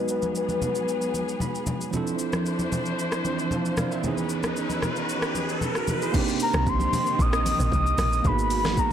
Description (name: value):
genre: amapiano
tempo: 114 BPM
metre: 4/4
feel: straight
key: unclear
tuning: A4 = 437 Hz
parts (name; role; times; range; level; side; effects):
- soft octave-layered synth lead; melody; 0.0-1.6, 6.4-8.9 s; Cb5 to Eb6; -26 LUFS; left 2 dB; chorus, tremolo, low-pass filter, ping-pong delay
- bell-like tine electric piano; accompaniment; 0.0-8.9 s; Eb3 to Cb6; -29 LUFS; right 6 dB; low-pass filter
- warm studio string section; sustained chords; 0.0-8.9 s; Cb3 to C5; -32 LUFS; left 2 dB; low-pass filter
- smooth R&B drum kit; drums; 0.1-8.9 s; crash cymbal, hi-hat, kick drum, rim click, shaker, snare drum; -30 LUFS; equal; soft clipping on snare
- congas; percussion; 0.2-8.8 s; none; -32 LUFS; left 2 dB; none
- riser; sound effects; 3.0-6.1 s; none; -34 LUFS; equal; none
- woody log drum bass; bass; 6.5-8.9 s; Ab1 to C2; -26 LUFS; equal; none
room: light reverb, digital ambience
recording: blown-out, overdriven recording, overdrive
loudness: -23 LUFS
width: side -9 dB against mid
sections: 0.0-6.1 A section; 6.1-8.9 B section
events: filter sweep 0.0-6.1; tine electric piano fill 1.1-1.9; riser 3.0-6.1; kick muted 5.1-6.1; drop 6.1-8.9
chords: 0.0 Abm7; 1.9 Dm9; 4.0 Dbm9; 6.1 Cm9; 8.2 Abm9